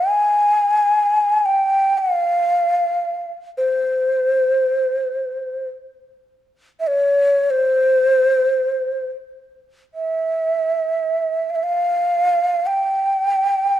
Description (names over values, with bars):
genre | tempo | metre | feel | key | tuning
Arabic maqam ensemble | free time | none | none | C maqam hijaz | A4 = 440 Hz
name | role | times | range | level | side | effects
breathy mellow ney | solo | 0.0-13.8 s | C5 to Ab5 | -16 LUFS | equal | none
room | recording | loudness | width
moderate recital hall reverb, RT60 1.7 s | dark, warm production | -16 LUFS | side -12 dB against mid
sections
0.0-9.3 A section; 9.3-13.8 A section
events
none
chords
none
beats
free time